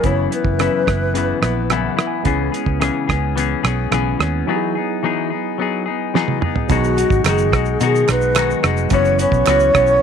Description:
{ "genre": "indie pop, bedroom pop", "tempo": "108 BPM", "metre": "4/4", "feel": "straight", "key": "B major", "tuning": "A4 = 440 Hz", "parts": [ { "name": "alto flute", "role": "melody", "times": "0.0-1.9, 6.7-10.0 s", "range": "F#4 to C#5", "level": "-18 LUFS", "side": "equal", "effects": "lush chorus" }, { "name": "semi-hollow electric guitar", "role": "accompaniment", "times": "0.0-10.0 s", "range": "F#2 to G#4", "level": "-20 LUFS", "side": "left 12 dB", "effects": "wide subtle chorus, warbly pitch drift" }, { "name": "tine electric piano", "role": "accompaniment", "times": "0.0-10.0 s", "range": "F#3 to G#5", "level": "-26 LUFS", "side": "right 16 dB", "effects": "medium stereo tremolo" }, { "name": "vintage muted fingered electric bass", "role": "bass", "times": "0.0-10.0 s", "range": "E#1 to B2", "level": "-20 LUFS", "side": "right 1 dB", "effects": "none" }, { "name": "cloth-damped thuddy drum kit", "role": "drums", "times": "0.0-10.0 s", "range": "hi-hat, kick drum, rim click, shaker, snare drum, toms", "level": "-20 LUFS", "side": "right 4 dB", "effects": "none" }, { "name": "group handclap", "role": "percussion", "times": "7.3-9.6 s", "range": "none", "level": "-28 LUFS", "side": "right 16 dB", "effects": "none" } ], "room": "studio reverb", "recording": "1960s-style stereo with parts hard left and right", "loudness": "-15 LUFS", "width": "side -7 dB against mid", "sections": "0.0-6.7 A section; 6.7-10.0 B section", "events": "tine electric piano fill 1.1-2.3; drum fill 6.1-6.7", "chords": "0.0 F#7sus4; 2.3 C#m7; 4.5 Emaj9; 6.7 B6; 8.9 F#7sus4", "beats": "| 0.04 0.59 1.15 1.70 | 2.26 2.81 3.37 3.92 | 4.47 5.03 5.58 6.14 | 6.69 7.25 7.80 8.36 | 8.91 9.47 10.02" }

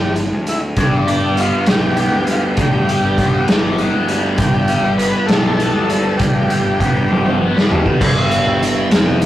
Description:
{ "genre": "psychedelic rock", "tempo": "66 BPM (dotted quarters)", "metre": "6/8", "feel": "straight", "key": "G mixolydian", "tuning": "A4 = 436 Hz", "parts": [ { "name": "combo organ", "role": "melody", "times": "0.0-7.4 s", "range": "D4 to B4", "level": "-21 LUFS", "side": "equal", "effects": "none" }, { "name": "fuzz picked electric bass", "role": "bass", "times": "0.0-9.3 s", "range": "F1 to D2", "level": "-24 LUFS", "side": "equal", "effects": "overdrive" }, { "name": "raw garage drum kit", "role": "drums", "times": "0.2-9.3 s", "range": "crash cymbal, hi-hat, kick drum, snare drum, toms", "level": "-16 LUFS", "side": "equal", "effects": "none" }, { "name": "tonewheel organ", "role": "sustained chords", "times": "0.8-9.3 s", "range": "G3 to G4", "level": "-26 LUFS", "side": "right 3 dB", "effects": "none" }, { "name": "fuzz guitar", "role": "riff", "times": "0.8-9.3 s", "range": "F2 to G4", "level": "-18 LUFS", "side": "left 1 dB", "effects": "distortion, phaser" }, { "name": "congas", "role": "percussion", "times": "8.0-9.3 s", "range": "none", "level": "-28 LUFS", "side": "left 1 dB", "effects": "none" } ], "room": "moderate studio ambience, RT60 0.5 s", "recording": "rough rehearsal-room recording, warm saturation", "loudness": "-13 LUFS", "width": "side -13 dB against mid", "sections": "0.0-8.0 A section; 8.0-9.3 B section", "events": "drum fill 7.1-8.0", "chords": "0.0 G", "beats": "| 0.77 1.67 | 2.58 3.48 | 4.39 5.29 | 6.20 7.11 | 8.01 8.92" }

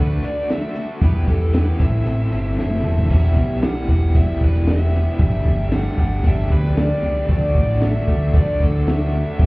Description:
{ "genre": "indie rock", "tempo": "115 BPM", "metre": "4/4", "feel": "straight", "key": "E minor", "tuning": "A4 = 440 Hz", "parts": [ { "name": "dark smooth lead guitar", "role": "melody", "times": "0.0-9.5 s", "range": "A4 to F#5", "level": "-27 LUFS", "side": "equal", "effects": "overdrive, tape echo" }, { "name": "overdriven electric guitar", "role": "riff", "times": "0.0-9.5 s", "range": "E3 to A4", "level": "-27 LUFS", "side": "left 2 dB", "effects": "tremolo" }, { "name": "raw garage guitar", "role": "riff", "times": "0.0-9.5 s", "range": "E3 to G4", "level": "-31 LUFS", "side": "right 4 dB", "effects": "overdrive, lush chorus, tape echo" }, { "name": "growling picked electric bass", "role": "bass", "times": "0.0-9.5 s", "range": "E1 to E2", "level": "-18 LUFS", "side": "equal", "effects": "overdrive" }, { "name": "compact cocktail drum kit", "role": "drums", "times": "0.2-9.5 s", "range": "crash cymbal, hi-hat, kick drum, snare drum, toms", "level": "-19 LUFS", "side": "equal", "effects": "none" }, { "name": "dark analog pad", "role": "sustained chords", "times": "7.3-9.5 s", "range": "G4 to D6", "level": "-35 LUFS", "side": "right 1 dB", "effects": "none" } ], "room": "studio ambience", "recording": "heard muffled through a wall, club reverb, EQ", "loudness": "-16 LUFS", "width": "side -24 dB against mid", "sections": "0.0-3.1 A section; 3.1-9.5 B section", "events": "drum fill 2.6-3.1", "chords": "0.0 D; 1.0 Em; 1.8 Am7; 3.1 Em; 5.2 Gsus2; 7.3 D", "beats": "0.49 | 1.01 1.54 2.06 2.58 | 3.11 3.63 4.15 4.68 | 5.20 5.72 6.25 6.77 | 7.29 7.82 8.34 8.87 | 9.39" }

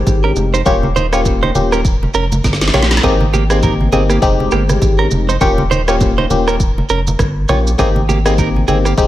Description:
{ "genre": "afrobeats", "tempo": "101 BPM", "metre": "4/4", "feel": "swing 58% on 16ths", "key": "Eb mixolydian", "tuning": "A4 = 439 Hz", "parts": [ { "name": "barking FM electric piano", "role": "accompaniment", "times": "0.0-9.1 s", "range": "Ab3 to G4", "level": "-17 LUFS", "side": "left 4 dB", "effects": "chorus, tremolo" }, { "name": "saturated sub bass", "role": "bass", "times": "0.0-9.1 s", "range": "Eb1 to Bb1", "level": "-16 LUFS", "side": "equal", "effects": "none" }, { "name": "afro-pop drum kit", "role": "drums", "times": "0.1-9.1 s", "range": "kick drum, rim click, shaker, snare drum", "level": "-17 LUFS", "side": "equal", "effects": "none" }, { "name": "congas", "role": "percussion", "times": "0.1-8.8 s", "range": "none", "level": "-21 LUFS", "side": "right 2 dB", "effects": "none" }, { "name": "direct-recorded clean electric guitar", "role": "riff", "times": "0.2-8.9 s", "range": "Bb3 to Db5", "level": "-19 LUFS", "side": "right 6 dB", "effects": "tape echo" } ], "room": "light reverb", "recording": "none", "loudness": "-11 LUFS", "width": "side -14 dB against mid", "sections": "0.0-9.1 A section", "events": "drum fill 2.4-3.0", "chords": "0.0 Fm9; 0.7 Eb7; 3.0 Abmaj7; 4.2 Fm9; 5.4 Eb7; 7.8 Abmaj7", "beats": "0.07 | 0.66 1.25 1.85 2.44 | 3.04 3.63 4.22 4.82 | 5.41 6.01 6.60 7.20 | 7.79 8.38 8.98" }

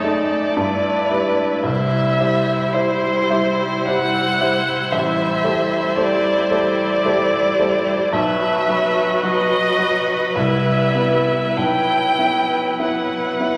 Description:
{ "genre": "classical, slow romantic movement for piano quintet", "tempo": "48-58 BPM", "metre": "3/4", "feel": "rubato", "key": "unclear", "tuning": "A4 = 439 Hz", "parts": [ { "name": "rich violin", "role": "melody", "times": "0.0-13.6 s", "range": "C5 to G5", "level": "-22 LUFS", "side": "equal", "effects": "none" }, { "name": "clear violin", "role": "second line", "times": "0.0-13.6 s", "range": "A4 to C5", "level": "-28 LUFS", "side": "equal", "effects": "none" }, { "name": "warm cello", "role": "second line", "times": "0.0-13.6 s", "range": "F#3 to A3", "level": "-30 LUFS", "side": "equal", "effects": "none" }, { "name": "rich viola", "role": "accompaniment", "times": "0.0-13.6 s", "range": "D#4 to F#4", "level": "-27 LUFS", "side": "equal", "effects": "none" }, { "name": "warm baby grand piano", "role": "accompaniment", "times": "0.0-13.6 s", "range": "A1 to C5", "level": "-24 LUFS", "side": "equal", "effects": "none" } ], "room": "wet recital hall reverb, RT60 1.8 s", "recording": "vinyl crackle", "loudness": "-18 LUFS", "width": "mono", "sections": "0.0-13.6 A section", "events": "none", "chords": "0.0 D#dim/F#; 0.6 Em/G; 1.6 C; 4.9 Am7; 8.1 B; 10.4 Cmaj7; 11.6 Bsus4", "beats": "0.56 | 1.63 2.72 3.86 | 4.92 5.97 7.04 | 8.12 9.22 10.36 | 11.56 12.79" }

